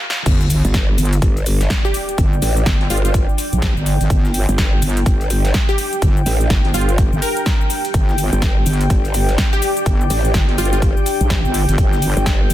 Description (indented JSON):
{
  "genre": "bass house",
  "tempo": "125 BPM",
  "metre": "4/4",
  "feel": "swing 61% on 16ths",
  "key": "unclear",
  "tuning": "A4 = 441 Hz",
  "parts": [
    { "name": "big-room dance drum kit", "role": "drums", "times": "0.1-12.5 s", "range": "crash cymbal, hi-hat, shaker, snare drum", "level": "-24 LUFS", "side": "equal", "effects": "studio reverb" },
    { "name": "deep dark ambient pad", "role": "sustained chords", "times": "1.5-12.5 s", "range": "D4 to G5", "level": "-27 LUFS", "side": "right 1 dB", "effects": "chorus, built-in reverb, sidechain pumping" },
    { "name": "wobble bass", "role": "bass", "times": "0.3-12.5 s", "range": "G1 to Bb1", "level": "-17 LUFS", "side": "equal", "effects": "chorus, tube saturation, sidechain pumping" },
    { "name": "dusty soul sampler-style drum kit", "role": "drums", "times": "0.3-12.5 s", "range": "hi-hat, snare drum", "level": "-33 LUFS", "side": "equal", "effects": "sidechain pumping on hats, high-pass filter on hats, studio reverb, high-pass filter on snare, high-pass filter on room" },
    { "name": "electronic kick drum", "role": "drums", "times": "0.3-12.4 s", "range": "none", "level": "-17 LUFS", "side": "equal", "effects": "high-pass filter on kick, studio reverb" },
    { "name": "sub drop", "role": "sound effects", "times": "0.3-2.2 s", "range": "none", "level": "-28 LUFS", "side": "equal", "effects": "none" },
    { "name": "growl bass", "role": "bass", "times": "0.6-12.5 s", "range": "G1 to A1", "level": "-17 LUFS", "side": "equal", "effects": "chorus, overdrive, sidechain pumping" },
    { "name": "airy breathy pad", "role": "texture", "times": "1.8-12.5 s", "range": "G5", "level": "-27 LUFS", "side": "left 2 dB", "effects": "chorus, sidechain pumping" },
    { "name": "plucky unison lead", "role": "melody", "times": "1.8-10.8 s", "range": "F4 to Bb4", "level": "-25 LUFS", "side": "left 1 dB", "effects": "wide subtle chorus, ping-pong delay" }
  ],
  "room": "digital ambience",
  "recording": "dense, heavily limited modern master, high-pass filter",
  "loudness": "-14 LUFS",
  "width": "side -13 dB against mid",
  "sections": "0.3-12.5 A section",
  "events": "break 0.0; drum fill 0.0; drop 0.3-12.5; impact 0.3-2.2",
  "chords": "0.3 G5",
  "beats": "| 0.26 0.74 1.22 1.70 | 2.18 2.66 3.14 3.62 | 4.10 4.58 5.06 5.54 | 6.02 6.50 6.98 7.46 | 7.94 8.42 8.90 9.38 | 9.86 10.34 10.82 11.30 | 11.78 12.26"
}